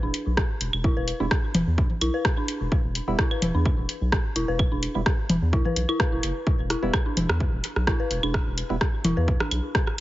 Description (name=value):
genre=minimal techno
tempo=128 BPM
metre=4/4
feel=swing 53% on 16ths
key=E minor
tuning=A4 = 440 Hz
part: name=dark detuned synth bell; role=riff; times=0.0-9.4 s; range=D4 to B4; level=-30 LUFS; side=left 1 dB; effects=chorus, sidechain pumping, digital delay
part: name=round analog bass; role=bass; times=0.0-9.6 s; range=E1 to E2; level=-27 LUFS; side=equal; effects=sidechain pumping
part: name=house drum kit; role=drums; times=0.1-10.0 s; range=hi-hat, rim click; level=-28 LUFS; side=equal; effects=none
part: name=electronic kick drum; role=drums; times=0.4-9.8 s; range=none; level=-24 LUFS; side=equal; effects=none
part: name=booming analog drum machine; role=percussion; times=0.7-10.0 s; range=claves, congas, rim click, toms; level=-27 LUFS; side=equal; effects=digital delay
part: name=percussive organ stab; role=stabs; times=1.2-8.8 s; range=G3 to E4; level=-32 LUFS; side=right 3 dB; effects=chorus, phaser, digital delay
room=little or no reverb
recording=heavily compressed radio sound, nothing above 7.6 kHz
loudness=-22 LUFS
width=side -16 dB against mid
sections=0.0-10.0 A section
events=none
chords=0.0 E5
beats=0.37 | 0.84 1.31 1.78 2.25 | 2.72 3.19 3.65 4.12 | 4.59 5.06 5.53 6.00 | 6.47 6.94 7.41 7.87 | 8.34 8.81 9.28 9.75